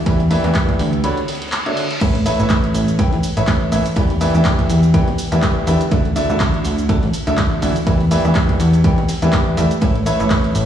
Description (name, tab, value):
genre	piano house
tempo	123 BPM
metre	4/4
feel	swing 56% on 16ths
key	E dorian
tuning	A4 = 440 Hz
part	bright baby grand piano	riff	0.1-10.7 s	D3 to B5	-20 LUFS	equal	sidechain pumping, dub echo
part	plucky analog bass	bass	0.1-10.7 s	A1 to E2	-17 LUFS	equal	sidechain pumping
part	compact cocktail drum kit	drums	0.1-10.7 s	hi-hat, ride cymbal, snare drum	-33 LUFS	equal	sidechain pumping on cymbals, high-pass filter on cymbals, sidechain pumping on hats, high-pass filter on hats, high-pass filter on snare, high-pass filter on room
part	electronic kick drum	drums	0.1-10.4 s	none	-18 LUFS	equal	none
part	punchy analog drum machine	drums	0.1-10.7 s	crash cymbal, handclaps, hi-hat, ride cymbal, shaker	-26 LUFS	equal	none
part	reverse cymbal and sub drop	sound effects	1.2-4.0 s	none	-29 LUFS	left 1 dB	none
room	light reverb, small room ambience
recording	played on a big sound system in a bare room, large studio reverb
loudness	-14 LUFS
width	side -10 dB against mid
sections	0.0-2.0 A section; 2.0-10.7 B section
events	break 1.0-2.0; reverse cymbal 1.2-2.0; drop 2.0-10.7; impact 2.0-4.0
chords	0.1 Em7; 1.0 Dmaj7; 2.0 Aadd9; 4.0 Em7; 5.9 Dadd9; 7.9 Em7; 9.8 Aadd9